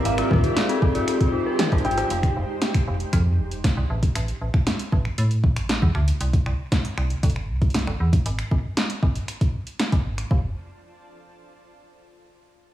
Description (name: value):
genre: IDM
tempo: 117 BPM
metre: 4/4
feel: straight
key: unclear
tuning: A4 = 440 Hz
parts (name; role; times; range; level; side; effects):
- warbly nostalgic lead; melody; 0.0-2.3 s; Bb4 to G5; -30 LUFS; left 1 dB; chorus, digital delay
- granular cloud pad; sustained chords; 0.0-2.1, 10.5 s; Ab3 to C5; -30 LUFS; right 3 dB; built-in reverb, sidechain pumping
- dark detuned synth bell; arpeggios; 0.0-2.1 s; C4 to F5; -26 LUFS; left 4 dB; chorus, tape echo
- metallic FM bass; bass; 0.1-10.5 s; F1 to A2; -23 LUFS; equal; none
- electro analog drum machine; drums; 0.1-10.3 s; finger snaps, hi-hat, rim click, snare drum, toms; -28 LUFS; equal; dub echo
- electronic kick drum; drums; 0.3-10.4 s; none; -20 LUFS; equal; overdrive
room: light reverb, digital ambience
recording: studio reverb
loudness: -20 LUFS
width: side -13 dB against mid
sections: 0.0-2.1 A section; 2.1-10.3 B section; 10.3-12.4 C section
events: drum fill 1.6-2.1; filter sweep on FM bass 2.1-10.3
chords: 0.1 Abmaj7; 2.1 N.C.; 4.2 A5; 6.2 C5; 8.3 N.C.; 10.3 F6